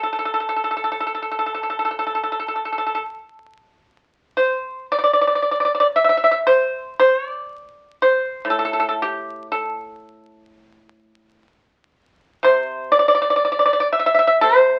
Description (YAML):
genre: chinese traditional, Chinese solo plucked strings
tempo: 59 BPM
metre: 4/4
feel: rubato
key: A yu mode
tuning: A4 = 440 Hz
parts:
  - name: pipa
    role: solo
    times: 0.0-14.8 s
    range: A2 to E5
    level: -19 LUFS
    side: equal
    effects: none
room: moderate studio reverb, RT60 0.8 s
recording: very old 78 rpm record, vinyl crackle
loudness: -19 LUFS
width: mono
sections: 0.0-4.4 A section; 4.4-14.8 B section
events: none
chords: none